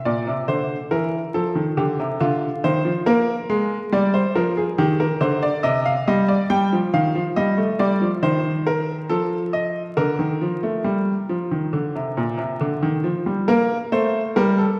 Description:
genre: classical, baroque-style two-part invention for grand piano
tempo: 69 BPM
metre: 4/4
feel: straight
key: Bb major from 6.5 s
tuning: A4 = 441 Hz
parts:
  - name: bright baby grand piano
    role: solo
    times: 0.1-14.8 s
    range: Bb2 to G5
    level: -21 LUFS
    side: equal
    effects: none
room: wet scoring stage reverb, RT60 1.9 s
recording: heard from further back in the room, vinyl crackle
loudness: -21 LUFS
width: mono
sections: 0.0-13.5 A section; 13.5-14.8 B section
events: none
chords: 0.0 C7; 1.3 F; 3.1 Bb7; 4.8 Eb; 6.5 G5; 8.2 Eb5; 9.1 F7; 10.0 Bb/D; 13.5 Bb5

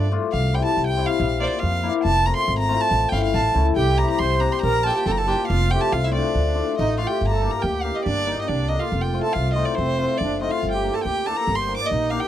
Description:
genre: klezmer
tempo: 140 BPM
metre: 2/4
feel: straight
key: D minor, G minor from 7.2 s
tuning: A4 = 440 Hz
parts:
  - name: rich violin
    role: melody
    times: 0.0-12.3 s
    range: C5 to D6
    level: -24 LUFS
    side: right 1 dB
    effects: none
  - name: accordion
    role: second line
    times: 0.0-0.1, 3.8-12.3 s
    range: C4 to D5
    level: -28 LUFS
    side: right 8 dB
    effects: light tremolo tuning
  - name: upright bass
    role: bass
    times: 0.0-12.2 s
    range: F1 to G2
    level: -23 LUFS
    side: right 1 dB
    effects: none
  - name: cimbalom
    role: accompaniment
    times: 0.1-12.2 s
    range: G3 to A4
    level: -25 LUFS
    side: left 9 dB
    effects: none
room: light reverb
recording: dry, close 1970s-style studio recording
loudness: -19 LUFS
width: side -11 dB against mid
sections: 0.3-7.2 A section; 7.2-12.3 B section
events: none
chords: 0.3 C; 1.2 Bb; 2.0 F; 2.9 A; 3.8 C; 4.6 Bb; 5.5 F; 6.3 Dm; 7.2 Gm; 8.9 F; 10.6 Gm

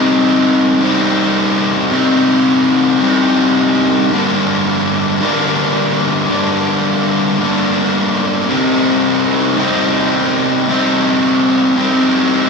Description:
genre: rock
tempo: 110 BPM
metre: 4/4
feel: straight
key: G minor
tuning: A4 = 440 Hz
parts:
  - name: fuzz guitar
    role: solo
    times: 0.0-12.5 s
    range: G2 to Eb4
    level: -11 LUFS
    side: left 1 dB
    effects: distortion, slapback echo
room: wet lush hall reverb, RT60 1.7 s, digital ambience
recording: big arena sound, small room ambience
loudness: -11 LUFS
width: side -4 dB against mid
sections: 0.0-4.1 A section; 4.1-12.5 A section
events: none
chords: 0.0 Cm; 4.1 Gm; 8.5 Cm

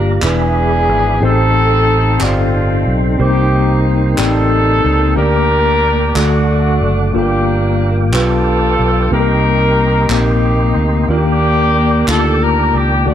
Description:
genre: slow gospel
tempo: 61 BPM (dotted quarters)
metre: 6/8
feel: straight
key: unclear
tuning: A4 = 440 Hz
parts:
  - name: clear horn section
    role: melody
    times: 0.0-13.1 s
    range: A3 to Bb4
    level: -16 LUFS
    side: left 1 dB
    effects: none
  - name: tine electric piano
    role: accompaniment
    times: 0.0-13.1 s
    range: G2 to A5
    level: -17 LUFS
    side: left 2 dB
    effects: medium stereo tremolo
  - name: percussive tonewheel organ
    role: sustained chords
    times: 0.0-13.1 s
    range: Bb3 to D6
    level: -21 LUFS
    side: right 2 dB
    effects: slow rotary speaker, chorus vibrato
  - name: fingered electric bass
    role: bass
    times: 0.0-13.1 s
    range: E1 to Eb2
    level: -15 LUFS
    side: equal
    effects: none
  - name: group handclap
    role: percussion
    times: 0.2-12.4 s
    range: none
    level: -22 LUFS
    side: right 1 dB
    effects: none
room: light reverb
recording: none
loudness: -11 LUFS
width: side -10 dB against mid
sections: 0.0-13.1 A section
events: none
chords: 0.2 E7; 1.2 Am7b5; 3.2 Cm7; 5.2 Gm/D; 6.2 D; 7.1 Gm7; 8.1 G7/B; 9.1 Cm7; 11.1 Ebmaj7

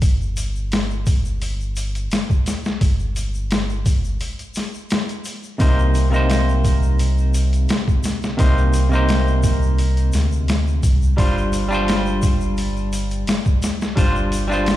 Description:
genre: trip hop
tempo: 86 BPM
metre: 4/4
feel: swing 53% on 16ths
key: C minor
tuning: A4 = 440 Hz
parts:
  - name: soft dub sub bass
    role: bass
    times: 0.0-14.8 s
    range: G1 to D2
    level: -19 LUFS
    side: equal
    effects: none
  - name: boom bap sampler-style drum kit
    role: drums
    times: 0.0-14.8 s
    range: hi-hat, kick drum, snare drum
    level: -20 LUFS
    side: equal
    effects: overdrive, small room ambience
  - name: tube shaker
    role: percussion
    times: 0.0-14.8 s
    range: none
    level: -37 LUFS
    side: left 4 dB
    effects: none
  - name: semi-hollow electric guitar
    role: accompaniment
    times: 5.6-14.8 s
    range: C3 to C5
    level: -21 LUFS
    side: right 1 dB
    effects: harmonic tremolo, tape echo
room: little or no reverb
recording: played on a big sound system in a bare room, large studio reverb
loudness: -17 LUFS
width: side -14 dB against mid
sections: 0.0-14.8 A section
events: break 4.2-5.6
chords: 0.0 N.C.; 5.6 Cm7; 11.2 G7sus4

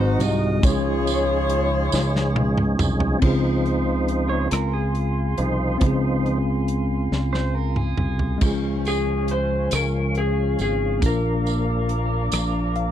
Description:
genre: slow gospel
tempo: 46 BPM (dotted quarters)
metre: 6/8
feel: straight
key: Db major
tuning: A4 = 435 Hz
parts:
  - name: clear saxophone section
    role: melody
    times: 0.0-2.8 s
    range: Eb4 to Eb5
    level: -24 LUFS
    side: left 2 dB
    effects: none
  - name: tine electric piano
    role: accompaniment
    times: 0.0-12.9 s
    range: Ab2 to F5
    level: -25 LUFS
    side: left 1 dB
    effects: medium stereo tremolo
  - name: tonewheel organ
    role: sustained chords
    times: 0.0-12.9 s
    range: Eb3 to C5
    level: -28 LUFS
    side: right 2 dB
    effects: chorus vibrato, stopped rotary speaker
  - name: fingered electric bass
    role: bass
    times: 0.0-12.9 s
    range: Ab1 to Db2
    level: -24 LUFS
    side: equal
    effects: none
  - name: modern studio drum kit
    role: drums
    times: 0.2-12.9 s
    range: crash cymbal, hi-hat, kick drum, rim click, snare drum, toms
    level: -23 LUFS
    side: equal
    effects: none
  - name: tambourine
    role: percussion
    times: 0.2-3.2, 8.4-12.7 s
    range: none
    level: -33 LUFS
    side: right 18 dB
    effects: none
  - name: small flute group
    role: sustained chords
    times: 3.2-12.9 s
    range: Db4 to D6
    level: -33 LUFS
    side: equal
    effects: none
  - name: clean electric guitar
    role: second line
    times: 4.3-8.4 s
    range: Ab4 to Db5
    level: -32 LUFS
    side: right 6 dB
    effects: none
  - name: electric slide guitar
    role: melody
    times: 8.9-12.7 s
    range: Ab4 to C5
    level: -26 LUFS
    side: left 3 dB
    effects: none
room: little or no reverb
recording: dry, close 1970s-style studio recording, tape saturation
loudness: -19 LUFS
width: side -10 dB against mid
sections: 0.0-3.2 A section; 3.2-8.4 B section; 8.4-12.9 C section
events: drum fill 1.9-3.2, 7.1-8.4; tonewheel organ solo 3.2-8.4; tine electric piano fill 12.3-12.9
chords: 0.0 Ab7; 0.6 Dbmaj7; 8.4 Db; 11.0 Bb

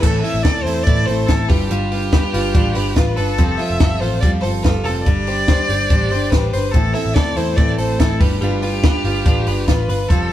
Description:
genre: jangly indie pop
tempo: 143 BPM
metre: 4/4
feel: straight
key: unclear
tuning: A4 = 440 Hz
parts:
  - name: warm violin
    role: melody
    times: 0.0-10.3 s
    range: G4 to E5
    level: -22 LUFS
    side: equal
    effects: none
  - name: picked plugged-in steel-string acoustic guitar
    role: accompaniment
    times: 0.0-10.3 s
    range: A2 to C5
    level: -24 LUFS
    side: right 2 dB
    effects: none
  - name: direct-recorded clean electric guitar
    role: arpeggios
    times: 0.0-10.3 s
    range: A2 to C5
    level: -24 LUFS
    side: left 2 dB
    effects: none
  - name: vintage muted picked electric bass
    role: bass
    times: 0.0-10.3 s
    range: F1 to A2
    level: -21 LUFS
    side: equal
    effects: none
  - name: compact cocktail drum kit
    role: drums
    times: 0.0-10.2 s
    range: crash cymbal, hi-hat, kick drum, snare drum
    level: -18 LUFS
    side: equal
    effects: none
room: moderate stone room reverb, RT60 1.4 s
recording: band playing live in one room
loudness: -14 LUFS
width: side -12 dB against mid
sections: 0.0-10.3 A section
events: none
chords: 0.0 Am; 1.5 G7; 3.4 Fadd9; 5.1 Csus2/G; 6.7 Am; 8.2 G7

